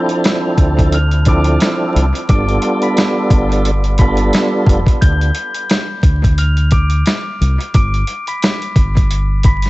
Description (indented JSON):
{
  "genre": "hip hop, boom-bap hip-hop",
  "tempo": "88 BPM",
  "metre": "4/4",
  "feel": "swing 56% on 16ths",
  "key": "D dorian",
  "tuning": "A4 = 442 Hz",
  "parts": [
    { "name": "glockenspiel with rubber mallets", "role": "melody", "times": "0.0-9.7 s", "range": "B5 to G7", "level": "-23 LUFS", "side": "left 2 dB", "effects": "high-pass filter, low-pass filter, analog delay" },
    { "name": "tonewheel organ", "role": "accompaniment", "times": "0.0-4.8 s", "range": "F3 to A4", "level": "-17 LUFS", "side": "right 1 dB", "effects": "overdrive, chorus vibrato, slow rotary speaker, cassette tape, high-pass filter, low-pass filter, analog delay" },
    { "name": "dusty soul sampler-style drum kit", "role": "drums", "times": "0.1-9.7 s", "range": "hi-hat, kick drum, snare drum", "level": "-14 LUFS", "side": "equal", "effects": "none" },
    { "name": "deep dub fingered electric bass", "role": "bass", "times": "0.6-9.7 s", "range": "F1 to D2", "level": "-14 LUFS", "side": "equal", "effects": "none" }
  ],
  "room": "little or no reverb",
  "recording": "echo-heavy mix, vinyl crackle, nothing above 8.0 kHz",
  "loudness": "-12 LUFS",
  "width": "side -19 dB against mid",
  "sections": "0.0-9.7 A section",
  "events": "none",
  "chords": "0.0 Dm7; 2.3 G9; 5.0 Dm; 7.7 G",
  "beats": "0.25 0.93 1.61 | 2.29 2.97 3.66 4.34 | 5.02 5.70 6.38 7.07 | 7.75 8.43 9.11"
}